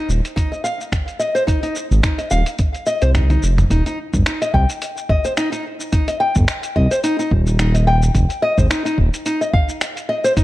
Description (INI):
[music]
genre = organic downtempo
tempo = 108 BPM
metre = 4/4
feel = swing 55% on 16ths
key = unclear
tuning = A4 = 440 Hz
[part]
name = nylon-string guitar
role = arpeggios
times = 0.0-10.4 s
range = Eb4 to G5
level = -20 LUFS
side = left 1 dB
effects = digital delay
[part]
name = smooth synth bass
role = bass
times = 0.1-9.1 s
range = Eb1 to C2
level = -15 LUFS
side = equal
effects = none
[part]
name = dusty soul sampler-style drum kit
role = drums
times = 0.1-10.4 s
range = finger snaps, hi-hat, shaker, toms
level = -25 LUFS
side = equal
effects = studio reverb
[part]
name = electronic kick drum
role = drums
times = 0.4-10.4 s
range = none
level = -18 LUFS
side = equal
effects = studio reverb
[sound]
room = light reverb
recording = dark, warm production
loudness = -16 LUFS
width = side -16 dB against mid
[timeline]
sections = 0.0-3.7 A section; 3.7-10.4 B section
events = drum fill 3.1-3.7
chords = 0.0 F7(no3); 3.7 Eb6; 8.1 F7(no3)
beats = 0.37 0.93 | 1.48 2.04 2.59 3.15 | 3.71 4.26 4.82 5.37 | 5.93 6.48 7.04 7.59 | 8.15 8.71 9.26 9.82 | 10.37